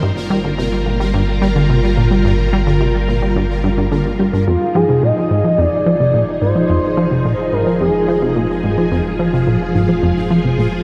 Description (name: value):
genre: ambient, sequencer-driven space music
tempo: 108 BPM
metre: 4/4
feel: straight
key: F dorian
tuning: A4 = 440 Hz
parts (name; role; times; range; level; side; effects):
- string machine, full ensemble; sustained chords; 0.0-10.8 s; F3 to Bb4; -22 LUFS; equal; ensemble chorus
- plucky analog bass; riff; 0.0-10.7 s; F2 to G3; -19 LUFS; equal; tape echo
- warm sub bass; bass; 0.0-10.8 s; F1 to G1; -24 LUFS; equal; none
- pulsing gated texture; texture; 0.0-10.8 s; Bb3 to F5; -32 LUFS; equal; chorus, built-in reverb
- expressive synth lead; melody; 4.5-8.3 s; F4 to Eb5; -22 LUFS; equal; analog chorus, tape echo
room: wet huge ambient reverb, RT60 7.5 s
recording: in a vast, echoing space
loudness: -15 LUFS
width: mono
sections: 0.0-4.5 A section; 4.5-10.8 A section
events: fade-in on sub bass 4.5-10.8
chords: 0.0 Gm7; 4.5 Fm7